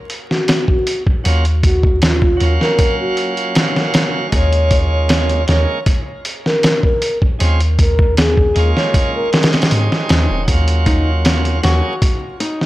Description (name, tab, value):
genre	trip hop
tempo	78 BPM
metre	4/4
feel	straight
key	Eb dorian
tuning	A4 = 442 Hz
part	dusty soul sampler-style drum kit	drums	0.1-12.7 s	hi-hat, kick drum, snare drum	-15 LUFS	equal	none
part	pure breathy sine lead	melody	0.3-9.5 s	F4 to Db5	-20 LUFS	equal	chorus, tape echo
part	bright tonewheel organ	accompaniment	1.2-12.0 s	Gb3 to F5	-22 LUFS	right 2 dB	overdrive, stopped rotary speaker, harmonic tremolo, tape echo
part	soft 808-style bass	bass	1.3-11.8 s	Eb1 to Ab2	-15 LUFS	equal	none
part	flamenco guitar	arpeggios	10.9-12.7 s	Eb4 to Gb4	-22 LUFS	left 2 dB	analog delay
room	digital ambience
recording	dry, gritty hardware recording, vinyl crackle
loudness	-12 LUFS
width	side -16 dB against mid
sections	0.0-12.7 A section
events	none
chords	0.0 Ebm7; 4.3 Bbm7/Eb; 10.5 Ebm7